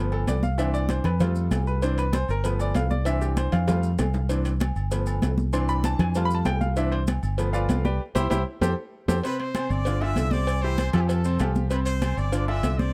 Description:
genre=latin, salsa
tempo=194 BPM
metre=4/4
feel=straight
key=C major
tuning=A4 = 439 Hz
part: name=bright grand piano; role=accompaniment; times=0.0-12.9 s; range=C3 to C6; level=-31 LUFS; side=equal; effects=none
part: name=fingered electric bass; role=bass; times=0.0-12.9 s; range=G1 to F2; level=-27 LUFS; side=equal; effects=none
part: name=agogo bells and timbales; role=percussion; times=0.1-12.8 s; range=none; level=-38 LUFS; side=equal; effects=none
part: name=congas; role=percussion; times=0.1-12.9 s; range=none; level=-31 LUFS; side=equal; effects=none
part: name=cowbell and bongos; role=percussion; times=0.3-12.8 s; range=none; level=-37 LUFS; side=equal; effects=none
part: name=maracas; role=percussion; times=0.3-12.9 s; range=none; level=-47 LUFS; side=equal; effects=none
part: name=bright trumpet section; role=melody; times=9.3-12.9 s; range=G4 to E6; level=-34 LUFS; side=equal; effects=none
room=little or no reverb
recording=close, detailed microphones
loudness=-25 LUFS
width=mono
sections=0.0-9.2 A section; 9.2-12.9 B section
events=grand piano solo 0.0-9.2; drum fill 3.7-4.3, 8.8-9.2; band accent 8.0-9.2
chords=0.0 G7; 0.6 Cadd9; 1.2 Fadd9; 1.8 Cadd9; 2.4 G7; 3.1 Cadd9; 3.7 Fadd9; 4.3 Cadd9; 4.9 G7; 5.5 Cadd9; 6.2 Fadd9; 6.8 Cadd9; 7.4 G7; 8.0 C; 8.6 Fadd9; 9.2 Csus2; 9.9 G5; 10.5 Cadd9; 11.1 Fadd9; 11.7 Csus2; 12.3 G5

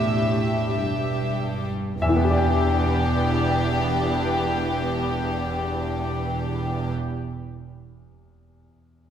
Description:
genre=cinematic, emotional film score for orchestra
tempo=48 BPM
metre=4/4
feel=rubato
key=E minor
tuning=A4 = 440 Hz
part: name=warm symphonic violin section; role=melody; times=0.0-6.9 s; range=G4 to E5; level=-29 LUFS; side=left 2 dB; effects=none
part: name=warm symphonic violin section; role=second line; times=0.0-6.9 s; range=D4 to G4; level=-30 LUFS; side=left 3 dB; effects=none
part: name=clear concert grand piano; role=accompaniment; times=0.0-9.1 s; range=E2 to G5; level=-28 LUFS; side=left 2 dB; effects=none
part: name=dark symphonic viola section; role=accompaniment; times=0.0-6.9 s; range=E3 to G4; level=-31 LUFS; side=right 1 dB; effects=none
part: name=dark studio double bass section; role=bass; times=0.0-6.9 s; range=E1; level=-30 LUFS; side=right 4 dB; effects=none
part: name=rich symphonic cello section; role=bass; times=0.0-6.9 s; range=E2 to A2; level=-27 LUFS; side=right 1 dB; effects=none
room=wet scoring stage reverb, RT60 1.8 s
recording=heard from further back in the room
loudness=-21 LUFS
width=side -9 dB against mid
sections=0.0-2.0 A section; 2.0-7.0 B section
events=slowing down 0.0-2.0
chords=0.0 Em7

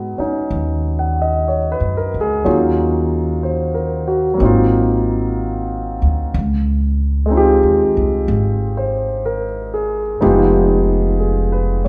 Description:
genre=jazz ballad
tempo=62 BPM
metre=4/4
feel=swing 67% on 8ths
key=unclear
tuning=A4 = 445 Hz
part: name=warm concert grand piano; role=accompaniment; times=0.0-11.9 s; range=F#3 to F#5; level=-19 LUFS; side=equal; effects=none
part: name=upright bass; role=bass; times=0.0-11.9 s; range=F1 to G#2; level=-21 LUFS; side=equal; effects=none
room=wet recital hall reverb, RT60 1.4 s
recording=recorded in a church or concert hall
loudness=-17 LUFS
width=mono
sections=0.0-11.9 A section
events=none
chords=0.0 G#m7; 2.5 D#m9; 4.4 G#13; 6.3 C#maj9#11; 10.2 Fm7b5

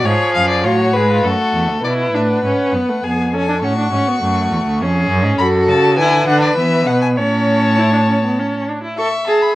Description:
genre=classical, baroque-style fugue for string quartet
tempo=101 BPM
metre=3/4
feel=straight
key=B minor, A major from 5.4 s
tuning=A4 = 444 Hz
part: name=rich violin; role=melody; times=0.0-9.6 s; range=A4 to C#6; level=-20 LUFS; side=left 3 dB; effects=none
part: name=warm violin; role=second line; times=0.0-9.5 s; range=E#4 to E5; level=-20 LUFS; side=left 1 dB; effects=none
part: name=warm viola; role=accompaniment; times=0.0-9.6 s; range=E#3 to A4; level=-18 LUFS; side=right 1 dB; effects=none
part: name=warm cello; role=bass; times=0.0-8.7 s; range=D2 to E3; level=-18 LUFS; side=right 1 dB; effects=none
room=light reverb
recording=worn, warbling old tape, cassette tape, warbly pitch drift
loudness=-13 LUFS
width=side -16 dB against mid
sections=0.0-1.8 A section; 1.8-9.0 B section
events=none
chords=0.1 C#7; 1.2 F#m; 1.8 Bm; 3.0 C#7/E#; 3.6 F#m; 4.8 C#/E#; 5.4 F#m; 6.0 D; 6.6 E5; 7.2 A

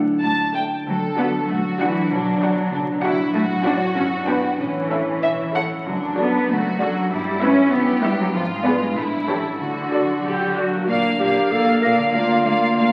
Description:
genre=cinematic, playful, whimsical film cue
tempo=96 BPM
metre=2/4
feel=straight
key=D major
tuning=A4 = 440 Hz
part: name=marimba with medium hard mallets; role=melody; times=0.0-0.5 s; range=D4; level=-39 LUFS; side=equal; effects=none
part: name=rich studio violin section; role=melody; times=0.0-12.9 s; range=C#5 to A5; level=-27 LUFS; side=equal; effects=none
part: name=clear chamber violin section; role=second line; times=0.0-12.9 s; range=C#4 to D5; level=-29 LUFS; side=equal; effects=none
part: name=clear studio viola section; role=accompaniment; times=0.0-12.9 s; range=A3 to B4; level=-27 LUFS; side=equal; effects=none
part: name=concert harp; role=arpeggios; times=0.0-12.9 s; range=F#2 to D5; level=-28 LUFS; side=equal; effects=none
part: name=rich studio cello section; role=bass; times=0.0-12.8 s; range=D2 to D4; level=-25 LUFS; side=equal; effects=none
part: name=rich studio double bass section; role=bass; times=0.0-12.8 s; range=E1 to D2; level=-41 LUFS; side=equal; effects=none
part: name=warm clarinet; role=second line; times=11.2-12.9 s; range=F4 to Bb4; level=-24 LUFS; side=equal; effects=none
room=wet scoring stage reverb, RT60 1.7 s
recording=very old 78 rpm record, vinyl crackle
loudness=-20 LUFS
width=mono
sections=0.9-10.9 A section; 10.9-12.9 B section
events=none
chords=0.0 D; 2.1 Bm; 3.3 F#m/A; 4.0 G; 4.6 A; 5.9 D/F#; 7.1 Em/G; 8.3 G#dim7; 9.0 A7; 9.6 D; 10.9 Bb; 12.1 Bb/D

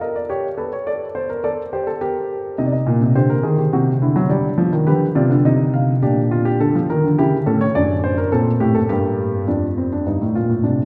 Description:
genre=classical, baroque-style 3-part fugue for grand piano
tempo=104 BPM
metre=3/4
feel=straight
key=unclear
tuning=A4 = 441 Hz
part: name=dark baby grand piano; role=solo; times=0.0-10.8 s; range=F2 to F5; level=-18 LUFS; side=equal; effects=none
room=wet church reverb, RT60 2.9 s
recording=recorded in a church or concert hall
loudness=-18 LUFS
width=mono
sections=0.0-9.5 A section; 9.5-10.8 B section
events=none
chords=0.3 A7/G; 0.9 D5/A; 2.0 Gm; 2.6 Cm; 3.7 D7/C; 4.3 G; 5.5 Cm; 6.0 Gm/Bb; 7.2 A7/C#; 7.8 D/F#; 8.9 Gm; 9.5 Dm/F

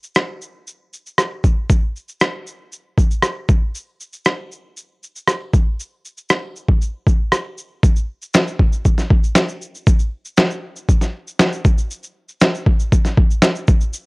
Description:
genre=pop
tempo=118 BPM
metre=4/4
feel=straight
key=none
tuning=none
part: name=dusty soul sampler-style drum kit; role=drums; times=0.0-14.1 s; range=kick drum, rim click, shaker, snare drum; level=-14 LUFS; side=equal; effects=overdrive
part: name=group handclap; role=percussion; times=8.3-13.5 s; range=none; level=-27 LUFS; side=left 2 dB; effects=none
room=little or no reverb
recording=worn, warbling old tape, cassette tape, warbly pitch drift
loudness=-16 LUFS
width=side -30 dB against mid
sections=0.0-7.8 A section; 7.8-14.1 B section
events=none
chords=none

